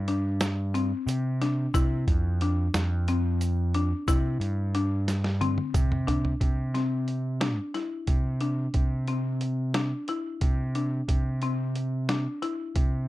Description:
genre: progressive instrumental, band music in an uneven meter.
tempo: 180 BPM (eighths).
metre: 7/8.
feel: straight.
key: C major.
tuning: A4 = 440 Hz.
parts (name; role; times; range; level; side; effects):
overdriven picked electric bass; bass; 0.0-13.1 s; F2 to C3; -27 LUFS; right 1 dB; none.
buzzing marimba with medium hard mallets; arpeggios; 0.1-13.0 s; C4 to E4; -31 LUFS; left 4 dB; plate reverb.
boom bap sampler-style drum kit; drums; 0.1-12.9 s; hi-hat, kick drum, snare drum, toms; -27 LUFS; right 1 dB; none.
egg shaker; percussion; 0.4-6.1 s; none; -46 LUFS; right 8 dB; none.
room: light reverb.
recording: dark, warm production.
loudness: -25 LUFS.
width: side -16 dB against mid.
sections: 0.0-6.4 A section; 6.4-13.1 B section.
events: drum fill 5.1-6.4.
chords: 0.0 Dm11; 6.4 Cadd9.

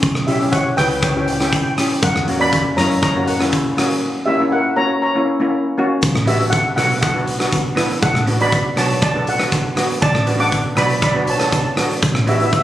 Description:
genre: calypso.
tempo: 120 BPM.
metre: 4/4.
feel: straight.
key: B minor.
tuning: A4 = 440 Hz.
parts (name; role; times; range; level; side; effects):
steel pan; accompaniment; 0.0-12.6 s; A#3 to A4; -20 LUFS; equal; none.
hollow-body short-scale fingered electric bass; bass; 0.0-12.6 s; A1 to F#2; -21 LUFS; equal; none.
big rock drum kit; drums; 0.0-12.6 s; hi-hat, kick drum, rim click; -20 LUFS; equal; none.
egg shaker; percussion; 0.0-12.6 s; none; -34 LUFS; left 2 dB; none.
steel pan; melody; 0.3-12.6 s; G4 to D6; -20 LUFS; equal; tape echo.
room: moderate small room ambience, RT60 0.5 s.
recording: recorded on a phone in the room, club reverb.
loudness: -15 LUFS.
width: side -13 dB against mid.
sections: 0.0-6.0 A section; 6.0-12.6 A section.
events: none.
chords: 0.0 C#dim; 2.0 F#; 6.0 Bm7.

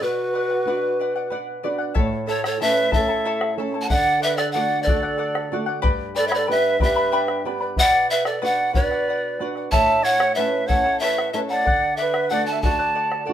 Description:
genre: andean folk, Andean ensemble.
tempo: 62 BPM (dotted quarters).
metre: 6/8.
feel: straight.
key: unclear.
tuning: A4 = 440 Hz.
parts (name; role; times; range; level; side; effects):
bright polished pan flute; melody; 0.0-13.3 s; B4 to A5; -21 LUFS; equal; none.
breathy large quena; second line; 0.0-13.3 s; F#4 to F#5; -25 LUFS; right 3 dB; none.
charango; accompaniment; 0.0-13.3 s; E4 to B5; -28 LUFS; left 6 dB; none.
flamenco guitar; accompaniment; 0.0-13.3 s; G2 to F#5; -29 LUFS; right 3 dB; none.
bombo; percussion; 2.0-13.3 s; none; -24 LUFS; left 1 dB; none.
room: moderate studio reverb, RT60 0.6 s.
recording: minimal, uncompressed stereo recording.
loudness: -19 LUFS.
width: side -10 dB against mid.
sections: 0.0-2.0 A section; 2.0-13.3 B section.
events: break 0.0-2.0; nylon-string guitar fill 1.0-2.0.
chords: 0.0 Bm; 2.0 A; 3.9 D; 5.8 G; 7.8 Bm; 9.7 A; 11.7 D.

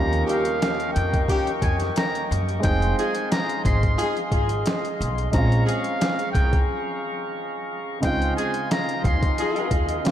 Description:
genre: hip hop, boom-bap hip-hop.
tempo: 89 BPM.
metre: 4/4.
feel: swing 54% on 16ths.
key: F minor.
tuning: A4 = 440 Hz.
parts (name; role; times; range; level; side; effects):
trumpet with metal mute; melody; 0.0-9.5 s; F5 to C6; -29 LUFS; equal; tape echo.
warm upright piano; accompaniment; 0.0-10.1 s; Eb2 to Ab4; -29 LUFS; right 2 dB; cassette tape.
tonewheel organ; sustained chords; 0.0-10.1 s; F4 to Db6; -29 LUFS; equal; slow rotary speaker.
upright bass; bass; 0.0-10.0 s; F1 to Gb2; -24 LUFS; equal; none.
boom bap sampler-style drum kit; drums; 0.1-10.1 s; hi-hat, kick drum, snare drum; -26 LUFS; equal; none.
warm horn section; stabs; 0.3-9.7 s; Eb3 to Ab4; -30 LUFS; left 2 dB; tape echo.
room: moderate cathedral reverb, RT60 5.9 s.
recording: dreamy mix soaked in reverb.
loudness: -20 LUFS.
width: side -11 dB against mid.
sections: 0.0-10.1 A section.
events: break 6.7-8.0.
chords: 0.0 Eb7; 2.6 Fm7; 5.3 Bbm7; 8.0 Dbmaj9.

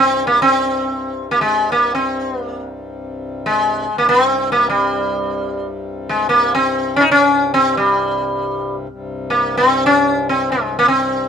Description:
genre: indian classical, Hindustani.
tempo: free time.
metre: none.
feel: none.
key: C raga bhairavi.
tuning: A4 = 442 Hz.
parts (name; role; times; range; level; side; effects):
sitar; melody; 0.0-11.3 s; G3 to Eb4; -14 LUFS; equal; none.
pedal harmonium; drone; 0.0-11.3 s; C2 to G2; -27 LUFS; left 3 dB; none.
room: light reverb.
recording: minimal, uncompressed stereo recording.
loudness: -14 LUFS.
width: side -7 dB against mid.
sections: 0.0-11.3 A section.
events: none.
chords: none.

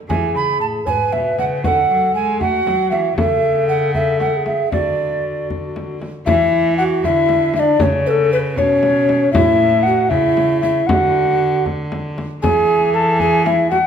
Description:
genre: classical, renaissance-style consort dance.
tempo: 78 BPM (dotted quarters).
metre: 6/8.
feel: straight.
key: unclear.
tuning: A4 = 445 Hz.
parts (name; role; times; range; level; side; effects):
mellow hollow tenor recorder; melody; 0.1-13.9 s; F#4 to A5; -18 LUFS; left 5 dB; none.
mellow hollow tenor recorder; second line; 0.1-13.8 s; C#4 to B5; -18 LUFS; right 5 dB; none.
rich cello; bass; 0.1-13.9 s; G#2 to A3; -22 LUFS; right 2 dB; none.
frame drum; percussion; 0.1-13.9 s; none; -24 LUFS; left 1 dB; none.
room: wet recital hall reverb, RT60 1.6 s.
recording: minimal, uncompressed stereo recording.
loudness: -14 LUFS.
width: side -8 dB against mid.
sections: 0.0-6.3 A section; 6.3-13.9 A section.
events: none.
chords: 0.1 E; 1.6 D; 3.2 A/C#; 4.7 D; 6.3 Dadd9; 7.8 Aadd9 (rootless); 9.3 A; 10.9 D; 12.4 E.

